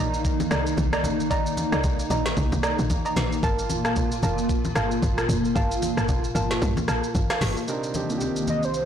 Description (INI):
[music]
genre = amapiano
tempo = 113 BPM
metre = 4/4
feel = swing 58% on 16ths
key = C minor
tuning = A4 = 439 Hz
[part]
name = hollow soft pad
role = sustained chords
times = 0.0-8.9 s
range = C2 to F4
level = -28 LUFS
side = equal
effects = ensemble chorus
[part]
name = soft round pluck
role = stabs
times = 0.0-7.4 s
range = Bb4 to Bb5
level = -30 LUFS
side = right 3 dB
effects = chorus, tape echo
[part]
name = woody log drum bass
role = bass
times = 0.0-7.5 s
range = F1 to G2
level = -28 LUFS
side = equal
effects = none
[part]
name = smooth R&B drum kit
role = drums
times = 0.1-8.9 s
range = hi-hat, kick drum, rim click, shaker, snare drum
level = -27 LUFS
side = equal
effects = soft clipping on snare
[part]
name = congas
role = percussion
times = 0.4-8.6 s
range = none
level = -32 LUFS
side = left 3 dB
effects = none
[part]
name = dark baby grand piano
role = accompaniment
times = 7.7-8.9 s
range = C3 to Bb4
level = -28 LUFS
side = right 3 dB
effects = none
[part]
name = warm velvety synth lead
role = melody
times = 8.5-8.9 s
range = C5 to Eb5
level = -25 LUFS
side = equal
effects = chorus
[sound]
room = light reverb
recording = blown-out, overdriven recording, overdrive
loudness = -22 LUFS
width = side -9 dB against mid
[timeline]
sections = 0.0-7.7 A section; 7.7-8.9 B section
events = drop 0.0-7.7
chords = 0.0 Cm9; 3.4 Gm9; 7.7 Cm9